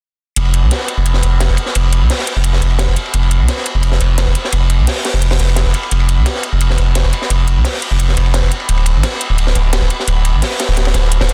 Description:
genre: liquid drum and bass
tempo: 173 BPM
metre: 4/4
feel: straight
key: F major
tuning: A4 = 439 Hz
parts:
  - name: warm sub bass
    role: bass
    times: 0.4-11.3 s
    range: D1 to C2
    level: -15 LUFS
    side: equal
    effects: tube saturation
  - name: crunchy breakbeat drum kit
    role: drums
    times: 0.4-11.3 s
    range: hi-hat, ride cymbal, snare drum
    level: -21 LUFS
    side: equal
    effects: high-pass filter on cymbals, high-pass filter on hats, high-pass filter on snare, high-pass filter on room
  - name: electronic hi-hat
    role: drums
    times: 0.4-11.3 s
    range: none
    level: -24 LUFS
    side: equal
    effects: none
room: small room ambience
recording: dense, heavily limited modern master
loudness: -15 LUFS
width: mono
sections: 0.4-11.3 A section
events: none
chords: none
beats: | 0.37 0.71 1.06 1.41 | 1.75 2.10 2.45 2.79 | 3.14 3.49 3.83 4.18 | 4.53 4.88 5.22 5.57 | 5.92 6.26 6.61 6.96 | 7.30 7.65 8.00 8.34 | 8.69 9.04 9.38 9.73 | 10.08 10.42 10.77 11.12

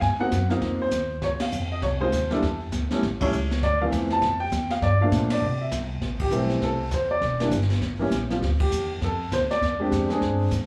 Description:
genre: jazz piano trio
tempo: 200 BPM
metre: 4/4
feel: swing 61% on 8ths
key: unclear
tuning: A4 = 440 Hz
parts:
  - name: warm upright piano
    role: melody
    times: 0.0-10.5 s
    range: E3 to A5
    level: -27 LUFS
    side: equal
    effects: slapback echo
  - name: upright bass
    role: bass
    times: 0.0-10.7 s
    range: E1 to C3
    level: -29 LUFS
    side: equal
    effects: none
  - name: vintage brush drum kit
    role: drums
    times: 0.0-10.7 s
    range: brushed snare drum, crash cymbal, hi-hat, kick drum, ride cymbal, snare drum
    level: -34 LUFS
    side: equal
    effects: slapback echo
room: small room reverb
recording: live gig heard through the venue's PA, club reverb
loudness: -25 LUFS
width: mono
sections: 0.0-6.0 A section; 6.0-10.7 B section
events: band accent 1.4, 3.2, 5.3, 6.2, 8.6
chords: 0.0 Ab7; 1.2 Dbmaj9; 2.4 Dsus2; 3.0 A; 3.6 Dm9; 4.8 Gm9; 5.4 C; 6.0 Am9; 7.2 Em7; 7.8 A7(no3); 8.4 Dmadd9; 9.6 E7alt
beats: | 0.02 0.32 0.62 0.92 | 1.22 1.52 1.82 2.12 | 2.42 2.72 3.02 3.33 | 3.62 3.92 4.22 4.53 | 4.82 5.12 5.42 5.72 | 6.02 6.32 6.62 6.92 | 7.22 7.52 7.82 8.12 | 8.42 8.72 9.02 9.32 | 9.62 9.92 10.22 10.52

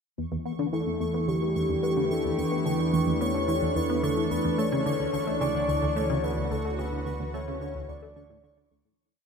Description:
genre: ambient, sequencer-driven space music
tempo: 109 BPM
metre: 4/4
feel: straight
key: E dorian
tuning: A4 = 436 Hz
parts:
  - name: lush unison pad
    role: sustained chords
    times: 0.2-9.0 s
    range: E3 to G4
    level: -30 LUFS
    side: right 1 dB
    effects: chorus
  - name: tight sequenced synth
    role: riff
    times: 0.2-8.9 s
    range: D2 to B3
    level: -30 LUFS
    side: equal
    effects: chorus, phaser, analog delay
  - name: analog drone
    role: bass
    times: 0.8-9.0 s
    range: D2 to E2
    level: -34 LUFS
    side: left 1 dB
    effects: chorus
  - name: pulsing gated texture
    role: texture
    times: 0.5-9.0 s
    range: C#6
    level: -38 LUFS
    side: right 3 dB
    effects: chorus, built-in reverb, shimmer reverb
  - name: soft octave-layered synth lead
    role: melody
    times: 0.7-8.7 s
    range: G4 to D5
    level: -31 LUFS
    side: left 2 dB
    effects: chorus, tremolo, shimmer reverb, analog delay
room: wet lush hall reverb, RT60 2.7 s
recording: dreamy mix soaked in reverb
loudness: -25 LUFS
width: side -6 dB against mid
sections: 0.2-9.0 A section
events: fade-out 6.1-9.0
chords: 0.2 Em; 4.6 D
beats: | 0.18 0.73 1.28 1.83 | 2.38 2.93 3.48 4.03 | 4.58 5.13 5.69 6.24 | 6.79 7.34 7.89 8.44

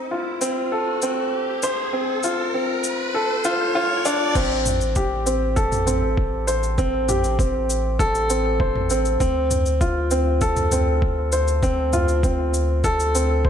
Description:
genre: piano and strings electronica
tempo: 99 BPM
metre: 4/4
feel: straight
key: D minor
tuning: A4 = 440 Hz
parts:
  - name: warm upright piano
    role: riff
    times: 0.0-13.5 s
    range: C4 to C5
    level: -21 LUFS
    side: equal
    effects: ping-pong delay
  - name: round analog bass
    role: bass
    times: 0.0-13.5 s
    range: A1 to D2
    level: -24 LUFS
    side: equal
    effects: sidechain pumping, high-pass filter
  - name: riser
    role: sound effects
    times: 0.0-4.4 s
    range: none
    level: -27 LUFS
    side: equal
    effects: none
  - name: organic electronic drum kit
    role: drums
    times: 0.4-13.3 s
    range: crash cymbal, shaker, toms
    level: -28 LUFS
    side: equal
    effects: none
  - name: electronic kick drum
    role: drums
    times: 4.4-13.5 s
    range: none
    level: -22 LUFS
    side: equal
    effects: overdrive
room: light reverb, digital ambience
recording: none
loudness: -19 LUFS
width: side -8 dB against mid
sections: 0.0-4.4 A section; 4.4-13.5 B section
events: build-up 0.0-4.4; riser 0.0-4.4; drop 4.4-13.5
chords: 0.0 Dm7; 4.4 Am7; 9.2 Dm7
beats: 0.12 0.72 1.33 | 1.93 2.54 3.15 3.75 | 4.36 4.96 5.57 6.18 | 6.78 7.39 7.99 8.60 | 9.21 9.81 10.42 11.03 | 11.63 12.24 12.84 13.45

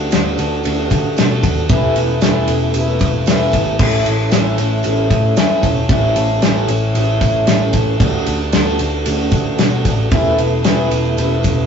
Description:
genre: folk rock and heartland rock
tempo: 114 BPM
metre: 4/4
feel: straight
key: A major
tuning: A4 = 441 Hz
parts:
  - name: picked acoustic archtop guitar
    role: accompaniment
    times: 0.0-11.7 s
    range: A2 to B4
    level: -20 LUFS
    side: left 3 dB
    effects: none
  - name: tonewheel organ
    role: sustained chords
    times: 0.0-11.7 s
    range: A3 to A4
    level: -23 LUFS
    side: right 2 dB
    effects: slow rotary speaker
  - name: vintage muted picked electric bass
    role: bass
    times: 0.0-11.7 s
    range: E1 to D3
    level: -19 LUFS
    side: equal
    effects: none
  - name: natural country drum kit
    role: drums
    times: 0.1-11.6 s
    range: crash cymbal, kick drum, ride cymbal, snare drum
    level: -16 LUFS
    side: equal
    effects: none
  - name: tambourine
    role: percussion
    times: 0.1-11.6 s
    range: none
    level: -39 LUFS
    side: right 6 dB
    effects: none
room: moderate small room reverb, RT60 0.6 s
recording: rough rehearsal-room recording, warm saturation, nothing above 7.7 kHz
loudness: -13 LUFS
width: side -7 dB against mid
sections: 0.0-11.7 A section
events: none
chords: 0.0 D; 1.7 Esus4; 3.8 A; 8.0 D; 10.1 Esus4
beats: 0.12 0.65 1.17 | 1.69 2.22 2.74 3.27 | 3.79 4.32 4.84 5.37 | 5.90 6.42 6.95 7.48 | 8.00 8.53 9.06 9.59 | 10.12 10.64 11.17

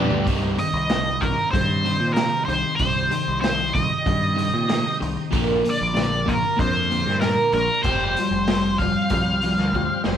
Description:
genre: classic rock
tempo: 95 BPM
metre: 4/4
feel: straight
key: C minor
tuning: A4 = 440 Hz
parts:
  - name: picked steel-string acoustic guitar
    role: accompaniment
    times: 0.0-10.2 s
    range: Bb2 to Bb4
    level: -31 LUFS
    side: right 4 dB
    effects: none
  - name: bright tonewheel organ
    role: sustained chords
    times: 0.0-10.2 s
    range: G3 to Eb5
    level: -36 LUFS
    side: left 1 dB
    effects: none
  - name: crunchy overdriven guitar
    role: riff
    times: 0.0-10.2 s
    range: G2 to G4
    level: -25 LUFS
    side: left 1 dB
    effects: none
  - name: growling picked electric bass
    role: bass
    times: 0.0-10.2 s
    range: F1 to Bb2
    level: -27 LUFS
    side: equal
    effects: overdrive
  - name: vintage drum kit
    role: drums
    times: 0.1-10.2 s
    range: hi-hat, kick drum, snare drum, toms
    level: -26 LUFS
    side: equal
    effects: none
  - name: octave-fuzz lead guitar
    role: melody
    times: 0.6-10.0 s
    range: Bb4 to F5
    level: -23 LUFS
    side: equal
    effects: wah, distortion
room: moderate stone room reverb, RT60 1.3 s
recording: band playing live in one room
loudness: -19 LUFS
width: side -9 dB against mid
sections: 0.3-10.2 A section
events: drum fill 0.0, 9.7-10.2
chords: 0.3 Cm; 5.3 Bb; 7.9 Fsus2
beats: | 0.27 0.90 1.53 2.17 | 2.80 3.43 4.06 4.70 | 5.33 5.96 6.59 7.22 | 7.85 8.48 9.11 9.74

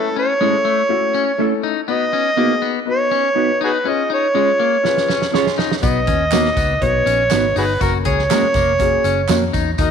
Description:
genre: uptempo 1960s-style soul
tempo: 122 BPM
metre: 4/4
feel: straight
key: F# major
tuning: A4 = 440 Hz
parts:
  - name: overdriven harmonica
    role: melody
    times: 0.0-9.9 s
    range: F#4 to D#5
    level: -18 LUFS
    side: right 2 dB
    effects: none
  - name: clear upright piano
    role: accompaniment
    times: 0.0-9.9 s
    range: A3 to C#5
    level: -23 LUFS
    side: left 12 dB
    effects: none
  - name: clean electric guitar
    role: riff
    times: 0.0-9.9 s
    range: G#3 to G#4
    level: -23 LUFS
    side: left 13 dB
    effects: none
  - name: mellow electric guitar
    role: stabs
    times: 0.4-9.4 s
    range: A3 to C#5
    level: -23 LUFS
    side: right 13 dB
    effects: none
  - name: natural country drum kit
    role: drums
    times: 4.8-9.9 s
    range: hi-hat, kick drum, snare drum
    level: -22 LUFS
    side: right 3 dB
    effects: none
  - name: warm horn section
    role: second line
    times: 5.1-5.7 s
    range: C#4 to C#5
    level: -26 LUFS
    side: right 11 dB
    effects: none
  - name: vintage muted fingered electric bass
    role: bass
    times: 5.8-9.9 s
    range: E#1 to E#2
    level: -22 LUFS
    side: equal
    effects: none
  - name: tambourine and handclaps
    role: percussion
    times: 5.8-9.9 s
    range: none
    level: -31 LUFS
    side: right 12 dB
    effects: none
room: moderate echo chamber reverb, RT60 2.3 s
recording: 1960s-style stereo with parts hard left and right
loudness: -14 LUFS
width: side -7 dB against mid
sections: 0.0-9.9 A section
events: band accent 3.9-5.8; drum fill 4.8-5.8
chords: 0.0 A; 1.9 B; 3.9 C#; 5.8 B; 7.8 F#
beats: 0.40 0.90 1.39 | 1.89 2.38 2.87 3.37 | 3.86 4.35 4.85 5.34 | 5.83 6.33 6.82 7.32 | 7.81 8.30 8.80 9.29 | 9.79

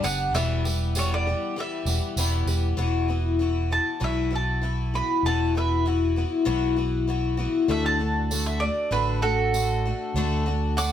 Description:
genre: folk rock and heartland rock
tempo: 98 BPM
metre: 4/4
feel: straight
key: E minor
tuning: A4 = 440 Hz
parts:
  - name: mandolin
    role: melody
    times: 0.0-10.9 s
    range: F#4 to D6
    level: -27 LUFS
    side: right 3 dB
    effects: none
  - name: picked twelve-string acoustic guitar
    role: accompaniment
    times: 0.0-10.9 s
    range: E2 to G4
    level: -27 LUFS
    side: left 6 dB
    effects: none
  - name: fingered electric bass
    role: bass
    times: 0.0-10.9 s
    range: E1 to D2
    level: -26 LUFS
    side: right 1 dB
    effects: none
  - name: tambourine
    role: percussion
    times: 0.0-2.6, 8.3-10.9 s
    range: none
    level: -32 LUFS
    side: right 4 dB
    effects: none
room: light reverb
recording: band playing live in one room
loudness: -22 LUFS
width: side -10 dB against mid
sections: 0.0-2.8 A section; 2.8-10.9 B section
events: mandolin solo 2.8-10.9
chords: 0.3 Em; 2.8 Esus2; 7.7 D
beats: | 0.35 0.96 1.57 2.18 | 2.79 3.40 4.01 4.63 | 5.24 5.86 6.47 7.09 | 7.70 8.32 8.93 9.54 | 10.16 10.78

